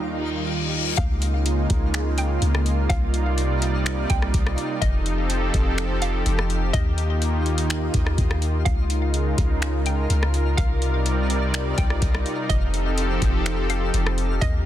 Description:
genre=hip hop, atmospheric cloud-rap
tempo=125 BPM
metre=4/4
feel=half-time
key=unclear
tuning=A4 = 440 Hz
part: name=hollow square pluck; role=melody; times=0.0-14.7 s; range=Eb5 to G5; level=-34 LUFS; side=equal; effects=chorus, low-pass filter, ping-pong delay
part: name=warm analog pad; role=sustained chords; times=0.0-14.7 s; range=Eb2 to D5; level=-26 LUFS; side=right 1 dB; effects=chorus, sidechain pumping
part: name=reverse cymbal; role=sound effects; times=0.2-1.0 s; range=none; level=-30 LUFS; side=left 6 dB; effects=none
part: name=twinkling granular texture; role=texture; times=0.0-14.7 s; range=Eb4 to D6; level=-35 LUFS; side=equal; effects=built-in reverb
part: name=soft 808-style bass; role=bass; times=1.0-14.7 s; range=F1 to Eb2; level=-23 LUFS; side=equal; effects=none
part: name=booming analog drum machine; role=drums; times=1.0-14.6 s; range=finger snaps, hi-hat, kick drum, rim click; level=-24 LUFS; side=equal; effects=soft clipping on snare
room=little or no reverb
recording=dense, heavily limited modern master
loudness=-20 LUFS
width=side -12 dB against mid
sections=1.0-14.7 A section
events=reverse cymbal 0.2-1.0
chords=0.0 Ebmaj9; 1.0 Db69; 2.9 Cm11; 4.8 F7; 6.7 Ebadd9; 8.7 Db69; 10.6 Cm11; 12.5 F7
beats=0.02 0.50 | 0.98 1.46 1.94 2.42 | 2.90 3.38 3.86 4.34 | 4.82 5.30 5.78 6.26 | 6.74 7.22 7.70 8.18 | 8.66 9.14 9.62 10.10 | 10.58 11.06 11.54 12.02 | 12.50 12.98 13.46 13.94 | 14.42

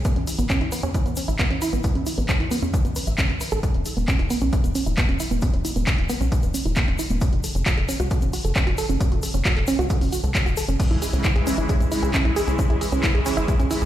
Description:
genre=uplifting trance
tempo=134 BPM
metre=4/4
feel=straight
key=C# minor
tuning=A4 = 440 Hz
part: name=tight sequencer bass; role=bass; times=0.0-13.9 s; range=E1 to E2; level=-24 LUFS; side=equal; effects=sidechain pumping
part: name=punchy analog drum machine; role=drums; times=0.0-13.9 s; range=crash cymbal, handclaps, hi-hat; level=-28 LUFS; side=equal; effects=sidechain pumping on hats, sidechain pumping on cymbals
part: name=tube shaker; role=percussion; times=0.0-13.9 s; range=none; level=-37 LUFS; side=left 5 dB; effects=none
part: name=wide unison pluck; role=arpeggios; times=0.1-13.8 s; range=B3 to E5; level=-27 LUFS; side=right 3 dB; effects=sidechain pumping, dub echo
part: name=electronic kick drum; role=drums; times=0.1-13.6 s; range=none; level=-22 LUFS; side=equal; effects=none
part: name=supersaw pad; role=sustained chords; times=10.8-13.9 s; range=C#3 to E4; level=-27 LUFS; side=equal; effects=phaser, sidechain pumping
room=light reverb, digital ambience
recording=played on a big sound system in a bare room, large studio reverb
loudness=-20 LUFS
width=side -12 dB against mid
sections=0.0-13.9 A section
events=filter sweep on synth arpeggio sound 0.0-13.9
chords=0.1 Aadd9; 3.6 E5; 7.2 F#5; 10.8 C#m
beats=| 0.05 0.50 0.95 1.39 | 1.84 2.29 2.74 3.19 | 3.63 4.08 4.53 4.98 | 5.42 5.87 6.32 6.77 | 7.21 7.66 8.11 8.56 | 9.01 9.45 9.90 10.35 | 10.80 11.24 11.69 12.14 | 12.59 13.04 13.48

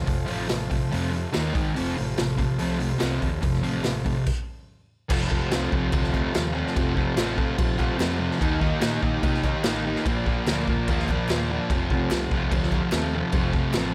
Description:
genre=garage rock duo or trio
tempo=145 BPM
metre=4/4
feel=straight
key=F mixolydian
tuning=A4 = 439 Hz
part: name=combo organ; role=sustained chords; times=0.0-13.9 s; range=F4 to Ab5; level=-38 LUFS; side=equal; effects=none
part: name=thick fuzz guitar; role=riff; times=0.0-13.9 s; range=F2 to Eb4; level=-28 LUFS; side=equal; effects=distortion
part: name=hollow-body short-scale fingered electric bass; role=bass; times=0.0-13.9 s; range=F1 to C3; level=-33 LUFS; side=equal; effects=none
part: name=raw garage drum kit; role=drums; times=0.1-13.8 s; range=crash cymbal, hi-hat, kick drum, snare drum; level=-29 LUFS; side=equal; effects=none
part: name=group handclap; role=percussion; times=0.5-13.8 s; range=none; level=-44 LUFS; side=equal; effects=none
room=light reverb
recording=none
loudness=-25 LUFS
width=mono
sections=0.0-5.1 A section; 5.1-13.9 B section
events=transistor combo organ fill 1.1-1.8; stop 4.3-5.1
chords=0.0 F; 1.3 Eb5; 1.5 Ab5; 1.8 F; 4.7 N.C.; 5.1 F; 8.4 Eb; 10.1 Bb; 11.7 F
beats=| 0.08 0.50 0.92 1.34 | 1.76 2.18 2.60 3.01 | 3.43 3.85 4.27 4.69 | 5.10 5.52 5.93 6.35 | 6.76 7.17 7.59 8.00 | 8.41 8.82 9.24 9.65 | 10.06 10.47 10.88 11.29 | 11.70 12.11 12.52 12.92 | 13.33 13.74

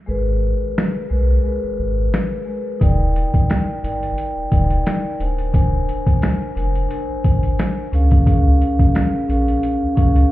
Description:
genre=hip hop, boom-bap hip-hop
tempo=88 BPM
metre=4/4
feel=swing 55% on 16ths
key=Eb major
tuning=A4 = 443 Hz
part: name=vibraphone with soft mallets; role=accompaniment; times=0.1-10.3 s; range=Ab3 to Ab5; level=-22 LUFS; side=left 1 dB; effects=high-pass filter, low-pass filter
part: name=warm sub bass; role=bass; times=0.1-10.3 s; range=D1 to Db2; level=-18 LUFS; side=equal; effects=none
part: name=boom bap sampler-style drum kit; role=drums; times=0.8-10.3 s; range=hi-hat, kick drum, snare drum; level=-17 LUFS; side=equal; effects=none
room=light reverb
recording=heard muffled through a wall, club reverb, EQ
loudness=-16 LUFS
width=side -16 dB against mid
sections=0.0-10.3 A section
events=break 0.0-2.8; kick muted 0.1-2.8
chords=0.1 Abmadd9; 2.8 Ebmaj7; 5.2 Bb7/D; 7.9 Db6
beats=| 0.09 0.77 1.45 2.13 | 2.81 3.49 4.18 4.86 | 5.54 6.22 6.90 7.58 | 8.27 8.95 9.63

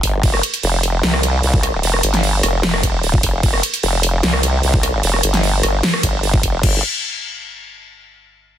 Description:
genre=heavy wobble dubstep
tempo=150 BPM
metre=4/4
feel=half-time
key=unclear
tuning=A4 = 440 Hz
part: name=formant-sweep wobble bass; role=bass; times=0.0-6.8 s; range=F1 to C2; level=-17 LUFS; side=equal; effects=chorus, overdrive
part: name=dubstep drum kit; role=drums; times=0.0-6.7 s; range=crash cymbal, hi-hat, rim click, snare drum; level=-18 LUFS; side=right 1 dB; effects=overdrive
part: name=electronic kick drum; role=drums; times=0.0-6.7 s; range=none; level=-17 LUFS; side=equal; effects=overdrive
room=little or no reverb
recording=dense, heavily limited modern master, faint mains hum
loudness=-14 LUFS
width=side -10 dB against mid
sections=0.0-6.6 A section; 6.6-8.2 B section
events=drop 0.0-6.6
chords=none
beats=| 0.23 0.63 1.03 1.43 | 1.83 2.23 2.63 3.03 | 3.43 3.83 4.23 4.63 | 5.03 5.43 5.83 6.23 | 6.63

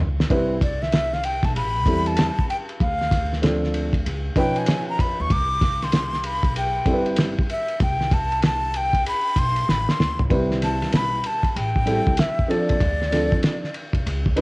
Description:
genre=hip hop, jazz-hop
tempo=96 BPM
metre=4/4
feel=swing 64% on 16ths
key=C major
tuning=A4 = 440 Hz
part: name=upright bass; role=bass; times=0.0-14.4 s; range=G1 to E2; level=-27 LUFS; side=equal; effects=none
part: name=cloth-damped thuddy drum kit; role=drums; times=0.2-14.4 s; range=hi-hat, kick drum, ride cymbal, snare drum, toms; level=-22 LUFS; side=equal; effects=cassette tape
part: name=dark concert grand piano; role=accompaniment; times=0.3-14.4 s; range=F3 to B4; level=-23 LUFS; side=right 1 dB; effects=cassette tape
part: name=breathy jazz flute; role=melody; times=0.6-13.7 s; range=D5 to D6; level=-24 LUFS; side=left 1 dB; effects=cassette tape, tape echo
room=light reverb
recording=home recording on cassette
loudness=-19 LUFS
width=side -25 dB against mid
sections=0.3-10.3 A section; 10.3-14.4 B section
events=drum fill 0.0-0.3, 9.7-10.3; flute solo 0.3-10.3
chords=0.3 Cmaj7; 1.6 Am7; 2.8 Dm7; 4.1 Db9; 5.3 Cmaj7(no3); 10.3 Cmaj7; 11.6 Am7; 12.8 Dm7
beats=| 0.30 0.93 1.55 2.18 | 2.80 3.43 4.05 4.68 | 5.30 5.93 6.55 7.18 | 7.80 8.43 9.05 9.68 | 10.30 10.93 11.55 12.18 | 12.80 13.43 14.05

